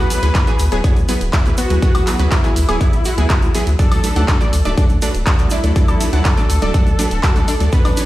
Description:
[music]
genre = progressive house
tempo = 122 BPM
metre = 4/4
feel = straight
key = D major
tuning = A4 = 440 Hz
[part]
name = wide unison lead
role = melody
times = 0.0-8.1 s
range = E4 to B4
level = -24 LUFS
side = left 1 dB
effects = lush chorus, sidechain pumping, digital delay
[part]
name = analog pluck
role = arpeggios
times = 0.0-7.9 s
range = B3 to F#5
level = -26 LUFS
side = left 1 dB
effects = chorus, sidechain pumping, digital delay
[part]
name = supersaw stab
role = stabs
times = 0.0-8.1 s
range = F#3 to F#5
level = -23 LUFS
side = right 2 dB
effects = vintage 12-bit sampler grit, sidechain pumping, digital delay
[part]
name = round analog bass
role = bass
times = 0.0-7.9 s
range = D1 to D2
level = -17 LUFS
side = equal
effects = sidechain pumping
[part]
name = dusty soul sampler-style drum kit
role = drums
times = 0.1-8.1 s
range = hi-hat, snare drum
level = -34 LUFS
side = left 1 dB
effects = none
[part]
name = house drum kit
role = drums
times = 0.1-8.1 s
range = handclaps, hi-hat, woodblock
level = -24 LUFS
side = equal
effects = overdrive
[part]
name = tube shaker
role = percussion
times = 0.1-8.1 s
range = none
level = -33 LUFS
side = right 3 dB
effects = none
[part]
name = electronic kick drum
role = drums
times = 0.3-7.8 s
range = none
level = -15 LUFS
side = equal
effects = none
[part]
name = congas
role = percussion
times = 4.0-8.1 s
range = none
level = -29 LUFS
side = right 2 dB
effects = sidechain pumping on perc
[sound]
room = little or no reverb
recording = played on a big sound system in a bare room, large studio reverb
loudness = -13 LUFS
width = side -16 dB against mid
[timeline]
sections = 0.0-8.1 A section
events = none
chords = 0.0 Eadd9/D; 3.8 D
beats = 0.35 0.84 1.33 | 1.82 2.32 2.81 3.30 | 3.79 4.28 4.78 5.27 | 5.76 6.25 6.74 7.23 | 7.73

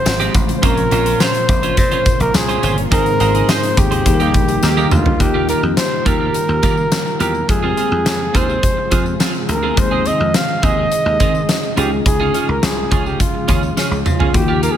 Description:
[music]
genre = 1980s-style pop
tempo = 105 BPM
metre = 4/4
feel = straight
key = unclear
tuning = A4 = 440 Hz
[part]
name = warm flugelhorn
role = melody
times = 0.0-14.8 s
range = F4 to F5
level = -20 LUFS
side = right 1 dB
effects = none
[part]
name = bell-like tine electric piano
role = accompaniment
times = 0.0-14.8 s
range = Ab2 to G5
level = -22 LUFS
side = left 5 dB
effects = phaser
[part]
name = granular cloud pad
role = sustained chords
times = 0.0-14.8 s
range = Bb2 to C5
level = -26 LUFS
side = equal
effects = built-in reverb
[part]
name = twelve-string electric guitar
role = riff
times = 0.1-14.8 s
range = Ab3 to C5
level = -23 LUFS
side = right 7 dB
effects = lush chorus, digital delay
[part]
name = dry thumbed slap bass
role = bass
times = 0.1-14.7 s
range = G1 to Eb3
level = -21 LUFS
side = equal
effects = none
[part]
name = huge arena drum kit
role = drums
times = 0.1-14.8 s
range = hi-hat, kick drum, snare drum, tambourine, toms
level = -18 LUFS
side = equal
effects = none
[part]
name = tambourine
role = percussion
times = 0.1-14.8 s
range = none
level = -33 LUFS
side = left 10 dB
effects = none
[part]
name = analog synth brass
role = stabs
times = 4.2-4.9 s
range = Eb3 to G4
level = -23 LUFS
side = right 3 dB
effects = chorus, digital delay
[sound]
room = light reverb, studio reverb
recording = none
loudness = -13 LUFS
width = side -10 dB against mid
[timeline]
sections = 0.0-5.2 A section; 5.2-14.8 B section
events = band accent 2.9-5.2; drum fill 4.6-5.2, 13.8-14.3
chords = 0.0 Fmadd9; 0.6 Bbmadd9; 2.9 Ab; 4.1 Eb; 5.2 Ebadd9; 7.5 Fm; 9.8 Ab; 11.8 Db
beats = 0.06 | 0.63 1.20 1.77 2.35 | 2.92 3.49 4.06 4.63 | 5.20 5.77 6.34 6.92 | 7.49 8.06 8.63 9.20 | 9.77 10.35 10.92 11.49 | 12.06 12.63 13.20 13.77 | 14.35

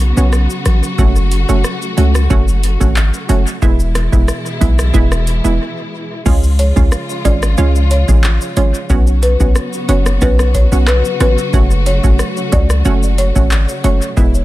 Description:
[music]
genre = dancehall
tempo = 91 BPM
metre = 4/4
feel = straight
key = F# minor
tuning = A4 = 440 Hz
[part]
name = warm studio string section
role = sustained chords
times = 0.0-14.4 s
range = B2 to F#4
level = -23 LUFS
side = left 1 dB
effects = sidechain pumping
[part]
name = warm 808-style bass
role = bass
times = 0.0-14.4 s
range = E1 to C#2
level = -13 LUFS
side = equal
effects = none
[part]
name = booming analog drum machine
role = drums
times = 0.0-14.4 s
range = crash cymbal, handclaps, hi-hat, kick drum, rim click, shaker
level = -15 LUFS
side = equal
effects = none
[part]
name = hollow square pluck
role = accompaniment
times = 0.2-14.4 s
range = G#3 to F#4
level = -20 LUFS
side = right 6 dB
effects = chorus
[part]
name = folk marimba with medium mallets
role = melody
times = 6.6-14.0 s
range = B4 to D5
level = -21 LUFS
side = left 2 dB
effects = dub echo
[sound]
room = digital ambience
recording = echo-heavy mix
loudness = -11 LUFS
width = side -16 dB against mid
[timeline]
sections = 0.0-6.3 A section; 6.3-14.4 B section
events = break 5.6-6.3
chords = 0.0 Bsus2; 1.0 F#m; 3.6 E; 6.3 C#; 8.9 Bsus2; 11.5 F#m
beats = 0.33 | 0.99 1.65 2.30 2.96 | 3.62 4.28 4.94 5.60 | 6.26 6.92 7.58 8.24 | 8.90 9.56 10.22 10.88 | 11.54 12.19 12.85 13.51 | 14.17

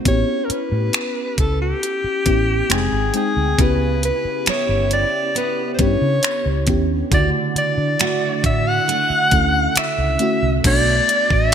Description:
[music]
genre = contemporary R&B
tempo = 68 BPM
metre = 4/4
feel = straight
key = unclear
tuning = A4 = 439 Hz
[part]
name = FM electric piano with soft pad layer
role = accompaniment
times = 0.0-11.5 s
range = C#3 to G5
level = -23 LUFS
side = left 1 dB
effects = chorus
[part]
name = warm alto saxophone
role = melody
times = 0.1-11.5 s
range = G4 to F#5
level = -20 LUFS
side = left 1 dB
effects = ping-pong delay
[part]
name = vintage muted fingered electric bass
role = bass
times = 0.1-11.5 s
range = F1 to D3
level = -21 LUFS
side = equal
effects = none
[part]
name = detuned 8-bit digital drum machine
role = drums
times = 0.1-11.5 s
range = crash cymbal, finger snaps, hi-hat, kick drum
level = -20 LUFS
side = equal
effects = overdrive
[part]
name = picked steel-string acoustic guitar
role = arpeggios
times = 3.6-11.2 s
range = C#3 to G4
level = -26 LUFS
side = right 8 dB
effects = ensemble chorus
[sound]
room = moderate plate reverb, RT60 2.2 s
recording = bright 1980s-style digital production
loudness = -16 LUFS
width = side -8 dB against mid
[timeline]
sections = 0.0-10.6 A section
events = none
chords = 0.1 A7; 2.7 Fm7; 3.6 C#m7b5; 7.1 Dmaj7; 10.6 Bm7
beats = | 0.06 0.94 1.82 2.70 | 3.58 4.47 5.35 6.23 | 7.12 8.00 8.88 9.76 | 10.64 11.53

